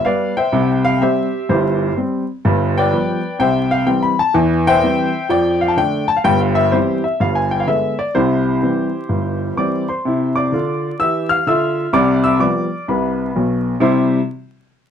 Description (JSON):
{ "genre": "jazz, stride piano", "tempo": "126 BPM", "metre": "4/4", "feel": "swing 65% on 8ths", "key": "C major", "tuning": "A4 = 438 Hz", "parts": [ { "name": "clear upright piano", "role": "solo", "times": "0.0-14.2 s", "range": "G1 to F6", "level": "-14 LUFS", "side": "left 1 dB", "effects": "none" } ], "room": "moderate studio ambience, RT60 0.4 s", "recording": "dark, warm production, vinyl crackle", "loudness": "-14 LUFS", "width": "side -8 dB against mid", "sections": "0.0-10.0 A section; 10.0-13.8 B section; 13.8-14.9 C section", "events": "none", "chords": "0.0 G7; 0.5 C; 2.4 G7; 3.4 C; 4.3 C/E; 5.3 Dm/F; 6.2 C/G; 7.2 G; 8.1 C; 10.0 F5/C; 11.9 G7/C; 13.8 C" }